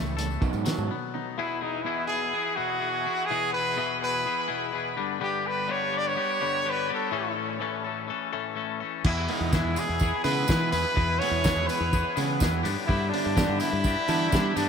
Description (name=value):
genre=indie rock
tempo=125 BPM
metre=4/4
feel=straight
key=unclear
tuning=A4 = 441 Hz
part: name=electric guitar through a small old amp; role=riff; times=0.0-1.4, 9.3-14.6 s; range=A2 to E4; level=-33 LUFS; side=right 9 dB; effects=analog chorus
part: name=twangy electric guitar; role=riff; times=0.0-14.7 s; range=E2 to A4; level=-31 LUFS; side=left 10 dB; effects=wide subtle chorus
part: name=modern bright fingered electric bass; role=bass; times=0.0-0.9, 9.0-14.7 s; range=B1 to G3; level=-29 LUFS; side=equal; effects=none
part: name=tambourine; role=percussion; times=0.1-0.8, 9.5-14.7 s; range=none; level=-42 LUFS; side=right 12 dB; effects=none
part: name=cloth-damped thuddy drum kit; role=drums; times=0.2-0.8, 9.0-14.7 s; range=crash cymbal, hi-hat, kick drum, snare drum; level=-29 LUFS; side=equal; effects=none
part: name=clear trumpet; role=melody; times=1.4-14.7 s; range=D4 to D5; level=-28 LUFS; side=equal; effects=ping-pong delay
room=moderate huge ambient reverb, RT60 8.5 s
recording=dreamy mix soaked in reverb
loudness=-24 LUFS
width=side -6 dB against mid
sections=0.0-1.4 A section; 1.4-14.7 B section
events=break 0.9-1.4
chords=0.4 B; 1.4 E; 5.0 G; 7.1 A; 9.1 E; 12.7 G